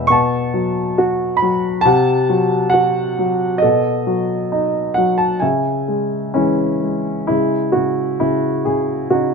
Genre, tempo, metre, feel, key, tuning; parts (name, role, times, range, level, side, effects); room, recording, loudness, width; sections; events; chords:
classical, lyrical solo piano; 62-70 BPM; 4/4; rubato; C# minor; A4 = 436 Hz
warm concert grand piano; solo; 0.0-9.3 s; E2 to C#6; -15 LUFS; equal
light reverb; close, detailed microphones; -15 LUFS; side -5 dB against mid
0.0-7.3 A section; 7.3-9.3 B section
0.1 B5; 1.8 F#dim/C; 3.6 B7; 5.4 C#m